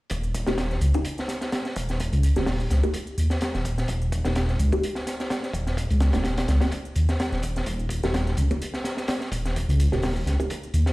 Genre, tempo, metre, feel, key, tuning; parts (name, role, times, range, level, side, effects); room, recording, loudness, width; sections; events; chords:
breakbeat, breaks; 127 BPM; 4/4; swing 54% on 16ths; A4 = 441 Hz
dark detuned saw bass; bass; 0.1-10.8 s; Eb1 to Eb2; -22 LUFS; equal
crunchy breakbeat drum kit; drums; 0.1-10.9 s; hi-hat, kick drum, snare drum; -29 LUFS; equal; high-pass filter on kick, high-pass filter on hats, high-pass filter on snare, high-pass filter on room
electronic hi-hat; drums; 0.1-10.9 s; -44 LUFS; right 1 dB
filtered dub chord stab; stabs; 0.5-10.9 s; Bb3 to G4; -30 LUFS; equal; phaser, wide subtle chorus, tape echo
light reverb; played on a big sound system in a bare room, stone room reverb, vinyl crackle; -22 LUFS; side -20 dB against mid
0.1-10.9 A section
0.1 Eb7